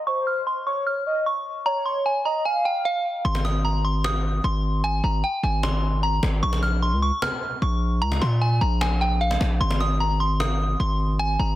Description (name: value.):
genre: hip hop, trap.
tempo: 151 BPM.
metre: 4/4.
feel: half-time.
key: Ab major.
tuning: A4 = 440 Hz.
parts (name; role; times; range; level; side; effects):
warm velvety synth lead; second line; 0.0-3.2 s; C5 to F5; -26 LUFS; equal; chorus, tape echo.
delicate synth tine bell; melody; 0.1-11.6 s; F5 to F6; -25 LUFS; equal; chorus, low-pass filter, tape echo.
distorted 808-style bass; bass; 3.2-11.6 s; Ab1 to Bb2; -22 LUFS; equal; distortion.
cajon; drums; 3.3-11.4 s; none; -31 LUFS; equal; none.
room: little or no reverb.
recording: dense, heavily limited modern master.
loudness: -21 LUFS.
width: side -14 dB against mid.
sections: 0.0-3.2 A section; 3.2-11.6 B section.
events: filter sweep on synth bell 0.0-3.2; hi-hats muted 3.2-9.6.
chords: 0.0 N.C.; 3.2 Ab; 6.4 Bbm; 9.6 Ab.